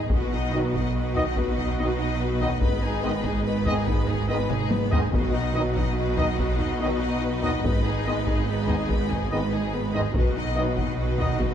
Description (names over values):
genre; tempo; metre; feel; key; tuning
cinematic, epic orchestral film score; 96 BPM (dotted quarters); 12/8; straight; B major; A4 = 440 Hz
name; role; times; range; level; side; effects
rich symphonic violin section; melody; 0.0-11.5 s; D#5 to B5; -37 LUFS; left 5 dB; none
rich symphonic violin section; second line; 0.0-11.5 s; G#4 to D#5; -34 LUFS; left 5 dB; none
warm symphonic viola section; accompaniment; 0.0-11.5 s; B3 to F#4; -32 LUFS; left 1 dB; none
rich symphonic string section; sustained chords; 0.0-11.5 s; D#4 to D#5; -34 LUFS; equal; none
clear symphonic double bass section; bass; 0.0-11.5 s; G#1 to B1; -30 LUFS; right 3 dB; none
rich symphonic cello section; bass; 0.0-11.5 s; G#2 to B2; -29 LUFS; right 2 dB; none
taiko ensemble; drums; 0.1-11.5 s; none; -28 LUFS; left 1 dB; none
mellow French horn section; sustained chords; 0.5-11.3 s; B3 to D#4; -36 LUFS; left 5 dB; none
mellow trombone section; sustained chords; 0.5-11.3 s; D#3 to G#3; -36 LUFS; right 3 dB; none
mellow trumpet section; stabs; 0.5-11.3 s; D#5; -34 LUFS; left 1 dB; none
timpani; percussion; 5.1-5.7, 10.1-11.5 s; B2; -36 LUFS; left 1 dB; none
room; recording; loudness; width
moderate concert hall reverb, RT60 1.8 s; dark, warm production; -22 LUFS; side -9 dB against mid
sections
0.0-11.5 A section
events
drum fill 4.5-5.1; timpani fill 10.1-11.5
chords
0.1 B; 2.6 G#m; 5.1 B; 7.6 G#m; 10.1 B